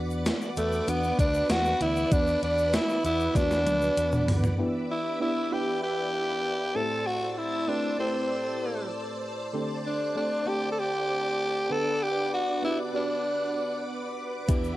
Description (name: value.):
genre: 1980s-style pop.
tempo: 97 BPM.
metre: 4/4.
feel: straight.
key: E minor.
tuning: A4 = 440 Hz.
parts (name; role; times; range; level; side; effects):
FM electric piano with auto-pan; accompaniment; 0.0-14.8 s; A2 to F#5; -34 LUFS; equal; phaser, cassette tape.
string machine, violins; sustained chords; 0.0-14.8 s; D4 to E6; -35 LUFS; equal; ensemble chorus, cassette tape.
fingered electric bass; bass; 0.0-4.5, 14.5-14.7 s; D2 to E2; -32 LUFS; equal; none.
egg shaker; percussion; 0.1-4.6, 14.5-14.8 s; none; -50 LUFS; left 9 dB; none.
gated 80s digital drum machine; drums; 0.3-4.6, 14.5-14.6 s; hi-hat, kick drum, snare drum, tambourine, toms; -26 LUFS; equal; gated reverb, gated reverb snare, overdrive.
growling tenor saxophone; melody; 0.6-14.8 s; A3 to A4; -27 LUFS; equal; cassette tape.
cranked stack guitar; accompaniment; 14.5-14.8 s; E2 to E3; -43 LUFS; equal; overdrive, ensemble chorus, cassette tape.
room: moderate studio reverb, RT60 0.5 s.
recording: home recording on cassette.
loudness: -25 LUFS.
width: side -16 dB against mid.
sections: 0.0-4.6 A section; 4.6-14.8 B section.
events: drum fill 3.4-4.6.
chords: 0.0 Bm; 4.6 Em7; 6.8 Am7; 9.5 D7sus4; 11.7 Gmaj7/D.